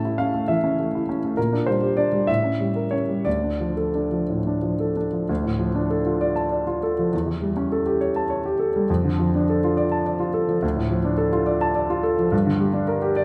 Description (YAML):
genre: classical, romantic character piece for solo piano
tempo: 58-72 BPM (dotted quarters)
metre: 6/8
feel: rubato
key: D minor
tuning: A4 = 440 Hz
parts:
  - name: clear grand piano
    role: solo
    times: 0.0-13.2 s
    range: D2 to A5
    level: -22 LUFS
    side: equal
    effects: none
room: wet recital hall reverb, RT60 1.4 s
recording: none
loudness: -23 LUFS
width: mono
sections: 0.0-5.3 A section; 5.3-13.2 B section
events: none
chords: 0.0 A; 1.4 Gm/Bb; 2.3 A7b9; 3.3 Dm; 7.1 A7/E; 8.9 Dm/F; 10.6 Dm; 12.3 Gm